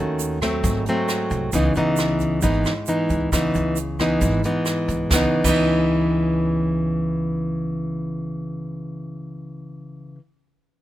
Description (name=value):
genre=bossa nova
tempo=134 BPM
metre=4/4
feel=straight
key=C# minor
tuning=A4 = 440 Hz
part: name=nylon-string guitar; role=accompaniment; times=0.0-10.2 s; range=G#2 to F#4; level=-21 LUFS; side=equal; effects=none
part: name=upright bass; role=bass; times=0.0-10.1 s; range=G#1 to D#2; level=-27 LUFS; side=right 1 dB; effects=none
part: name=jazz brush drum kit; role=drums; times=0.2-5.6 s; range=crash cymbal, hi-hat, kick drum, rim click, snare drum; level=-27 LUFS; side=right 1 dB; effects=none
part: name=egg shaker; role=percussion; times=0.2-5.6 s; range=none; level=-32 LUFS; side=right 10 dB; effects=none
room=light reverb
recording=none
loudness=-19 LUFS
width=side -14 dB against mid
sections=0.0-5.1 A section; 5.1-8.7 B section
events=none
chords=0.0 D#m7b5; 0.6 G#7b9; 1.5 C#m9